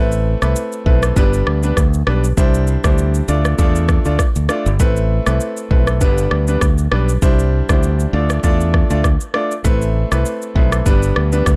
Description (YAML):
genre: afrobeats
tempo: 99 BPM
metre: 4/4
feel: swing 55% on 16ths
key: A minor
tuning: A4 = 440 Hz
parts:
  - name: clear grand piano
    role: accompaniment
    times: 0.0-11.5 s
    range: G3 to D5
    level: -22 LUFS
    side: equal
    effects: none
  - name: modern bright fingered electric bass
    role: bass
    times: 0.0-11.6 s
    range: G1 to E2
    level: -19 LUFS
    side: equal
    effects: none
  - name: afro-pop drum kit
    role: drums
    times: 0.1-11.6 s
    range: kick drum, rim click, shaker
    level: -19 LUFS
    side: equal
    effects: none
room: little or no reverb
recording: none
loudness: -16 LUFS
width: mono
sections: 0.0-11.6 A section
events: none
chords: 0.0 Amadd9; 1.2 G; 2.4 Cadd9; 3.3 Dm; 4.8 Amadd9; 6.0 G; 7.2 Cadd9; 8.1 Dm; 9.6 Amadd9; 10.9 G